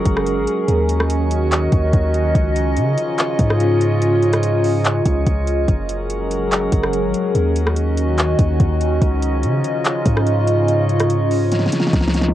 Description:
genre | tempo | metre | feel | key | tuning
hip hop, atmospheric cloud-rap | 144 BPM | 4/4 | half-time | Db major | A4 = 440 Hz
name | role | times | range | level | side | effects
warbly tape-like pad | sustained chords | 0.0-12.3 s | Db3 to Eb5 | -19 LUFS | equal | chorus, built-in reverb, phaser, sidechain pumping, cassette tape
drifting glass-harmonics texture | texture | 0.0-12.3 s | F3 to Db5 | -28 LUFS | equal | chorus, built-in reverb, cassette tape
long sustained 808-style bass | bass | 0.1-12.3 s | Gb1 to Db3 | -19 LUFS | equal | none
smooth R&B drum kit | drums | 0.1-12.3 s | handclaps, hi-hat, kick drum, rim click, snare drum | -19 LUFS | equal | overdrive
room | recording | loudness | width
moderate booth ambience, RT60 0.3 s | home recording on cassette, low-pass filter | -15 LUFS | side -13 dB against mid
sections
0.0-12.3 A section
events
drum fill 11.5-12.3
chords
0.0 Gbadd9; 0.7 Ebm7; 2.4 Dbadd9; 5.7 Gbadd9; 7.3 Ebm7; 9.0 Dbadd9

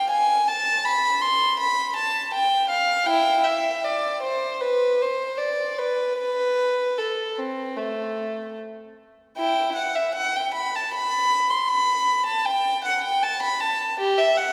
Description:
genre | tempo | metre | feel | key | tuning
classical, baroque-style suite movement for unaccompanied violin | 74-81 BPM | 4/4 | rubato | A minor | A4 = 442 Hz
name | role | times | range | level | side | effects
warm violin | solo | 0.0-14.5 s | A3 to C6 | -23 LUFS | equal | none
room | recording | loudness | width
wet church reverb, RT60 2.7 s | heard from further back in the room | -23 LUFS | mono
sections
0.0-9.4 A section; 9.4-14.5 A section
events
none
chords
none

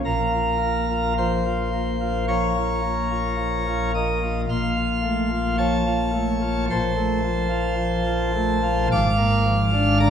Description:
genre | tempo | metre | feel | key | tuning
classical, chorale-style piece for pipe organ | 54 BPM | 4/4 | rubato | Bb minor | A4 = 438 Hz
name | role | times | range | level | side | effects
chamber organ, principal chorus | solo | 0.0-10.1 s | Ab1 to F6 | -20 LUFS | equal | none
room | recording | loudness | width
wet recital hall reverb, RT60 1.5 s | heard from further back in the room | -20 LUFS | side -8 dB against mid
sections
0.0-10.1 A section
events
none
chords
0.0 Bbm; 4.5 F/Bb; 8.9 Bb7/Ab

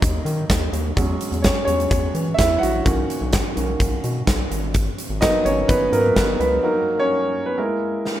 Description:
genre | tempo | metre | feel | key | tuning
piano-driven pop | 127 BPM | 4/4 | straight | G# minor | A4 = 440 Hz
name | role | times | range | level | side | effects
clear concert grand piano | accompaniment | 0.0-8.2 s | D#3 to F#5 | -20 LUFS | right 1 dB | none
round analog bass | bass | 0.0-6.6 s | G#1 to E3 | -24 LUFS | equal | none
huge arena drum kit | drums | 0.0-8.2 s | hi-hat, kick drum, snare drum | -22 LUFS | equal | none
room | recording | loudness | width
light reverb | rough home demo mix | -18 LUFS | side -12 dB against mid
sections
0.0-8.2 A section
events
grand piano solo 0.0-8.2; break 6.6-8.2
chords
0.0 D#m; 1.0 E6; 2.9 Bmaj7; 4.5 G#m7; 6.6 D#m; 7.6 G#sus2

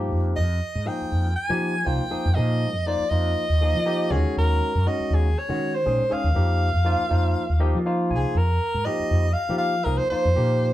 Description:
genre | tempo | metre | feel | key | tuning
jazz | 120 BPM | 4/4 | swing 54% on 16ths | F minor | A4 = 440 Hz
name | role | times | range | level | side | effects
barky tine electric piano | accompaniment | 0.0-10.7 s | Eb3 to Ab5 | -28 LUFS | left 2 dB | none
mellow fretless electric bass | bass | 0.0-10.7 s | Bb1 to F3 | -22 LUFS | equal | none
clear soprano saxophone | melody | 0.4-10.7 s | Ab4 to Ab5 | -25 LUFS | equal | none
room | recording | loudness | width
moderate studio reverb, RT60 0.5 s | band playing live in one room | -20 LUFS | side -14 dB against mid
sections
0.0-8.4 A section; 8.4-10.7 A section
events
tine electric piano fill 7.4-8.4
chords
0.4 Fm11; 4.1 Ebm7; 6.4 F9sus4

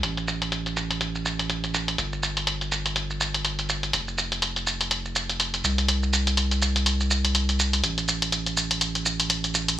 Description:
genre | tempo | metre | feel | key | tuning
deep house | 123 BPM | 4/4 | swing 58% on 16ths | unclear | A4 = 445 Hz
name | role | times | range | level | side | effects
round analog bass | bass | 0.0-9.8 s | F1 to C2 | -27 LUFS | right 1 dB | sidechain pumping
electronic hi-hat and shaker | drums | 0.0-9.8 s | none | -29 LUFS | right 1 dB | overdrive, low-pass filter on hats, low-pass filter on perc, low-pass filter on cymbals
room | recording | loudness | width
digital ambience | dry, gritty hardware recording, studio ambience | -22 LUFS | side -12 dB against mid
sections
0.0-9.8 A section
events
none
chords
none

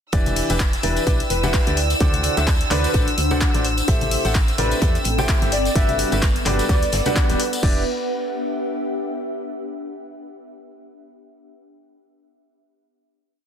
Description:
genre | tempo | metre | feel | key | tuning
piano house | 128 BPM | 4/4 | swing 57% on 16ths | E minor | A4 = 440 Hz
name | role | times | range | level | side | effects
warm studio violin section | sustained chords | 0.1-7.6 s | E6 | -29 LUFS | equal | sidechain pumping
bright grand piano | riff | 0.1-7.8 s | D3 to G5 | -25 LUFS | equal | sidechain pumping, dub echo
solid FM bass | bass | 0.1-7.8 s | D1 to E2 | -24 LUFS | equal | sidechain pumping
electronic kick drum | drums | 0.1-7.7 s | none | -20 LUFS | equal | none
open jazz drum kit | drums | 0.1-7.5 s | hi-hat, snare drum | -35 LUFS | right 4 dB | none
punchy analog drum machine | drums | 0.1-7.7 s | crash cymbal, handclaps, hi-hat | -27 LUFS | left 2 dB | overdrive
tambourine and congas | percussion | 0.1-7.6 s | none | -31 LUFS | left 3 dB | none
ethereal airy pad | texture | 0.9-9.5 s | B3 to G5 | -27 LUFS | equal | ensemble chorus, built-in reverb, sidechain pumping
airy dreamy lead | melody | 0.8-7.2 s | B4 to E5 | -27 LUFS | left 1 dB | chorus, dub echo
room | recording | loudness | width
light reverb, small room ambience | dense, heavily limited modern master | -17 LUFS | side -8 dB against mid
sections
0.1-7.6 drop; 7.6-9.5 final chord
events
drop 0.1-7.6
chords
0.1 Em7; 1.8 D7; 3.6 Am7; 5.5 Gmaj7; 7.6 Em7

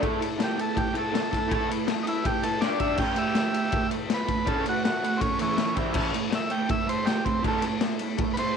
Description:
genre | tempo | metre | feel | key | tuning
garage rock duo or trio | 162 BPM | 4/4 | straight | A major | A4 = 439 Hz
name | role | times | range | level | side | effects
raw garage guitar | riff | 0.0-8.5 s | A2 to A4 | -28 LUFS | right 3 dB | overdrive
raw garage drum kit | drums | 0.0-8.5 s | crash cymbal, kick drum, ride cymbal, snare drum | -28 LUFS | left 3 dB | none
overdriven combo organ | melody | 0.4-8.6 s | E3 to G5 | -28 LUFS | right 2 dB | none
room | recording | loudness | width
light reverb, small room ambience | 1960s-style stereo | -24 LUFS | side -6 dB against mid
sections
0.0-8.6 A section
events
transistor combo organ solo 0.0-8.6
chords
0.0 A5; 2.6 G5; 3.0 A; 5.8 C5; 6.0 A

